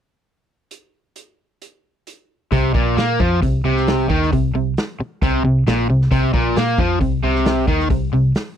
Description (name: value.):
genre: blues rock power trio and southern rock.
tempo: 134 BPM.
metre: 4/4.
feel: straight.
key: unclear.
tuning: A4 = 440 Hz.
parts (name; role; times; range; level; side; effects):
vintage drum kit; drums; 0.7-8.5 s; hi-hat, kick drum, snare drum; -22 LUFS; equal; none.
overdriven semi-hollow guitar; riff; 2.5-8.3 s; Bb2 to Bb3; -18 LUFS; equal; none.
vintage muted picked electric bass; bass; 2.5-8.3 s; Bb1 to Bb2; -21 LUFS; equal; none.
room: little or no reverb.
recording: dry, close 1970s-style studio recording.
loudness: -15 LUFS.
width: side -9 dB against mid.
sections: 0.7-2.5 A section; 2.5-8.6 B section.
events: none.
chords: 0.7 N.C.; 2.5 Bbsus24.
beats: | 0.72 1.17 1.62 2.07 | 2.52 2.97 3.42 3.87 | 4.32 4.77 5.22 5.67 | 6.12 6.57 7.02 7.46 | 7.91 8.36.